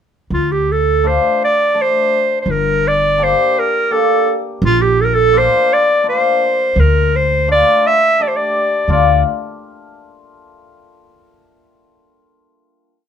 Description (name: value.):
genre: klezmer.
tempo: 84 BPM.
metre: 3/4.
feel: straight.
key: D minor.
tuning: A4 = 440 Hz.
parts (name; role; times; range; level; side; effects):
bright clarinet; melody; 0.3-9.2 s; F4 to E5; -13 LUFS; right 1 dB; none.
upright bass; bass; 0.3-9.2 s; G1 to D2; -16 LUFS; equal; none.
cimbalom; accompaniment; 1.0-9.2 s; A3 to G4; -20 LUFS; left 7 dB; none.
room: light reverb.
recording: minimal, uncompressed stereo recording.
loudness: -12 LUFS.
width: side -8 dB against mid.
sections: 0.3-8.9 A section; 8.9-11.0 final chord.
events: none.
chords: 0.3 Dm; 2.5 Gm; 4.6 Bb; 6.8 Dm.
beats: | 0.31 1.03 1.75 | 2.47 3.19 3.90 | 4.62 5.33 6.04 | 6.76 7.47 8.18 | 8.89.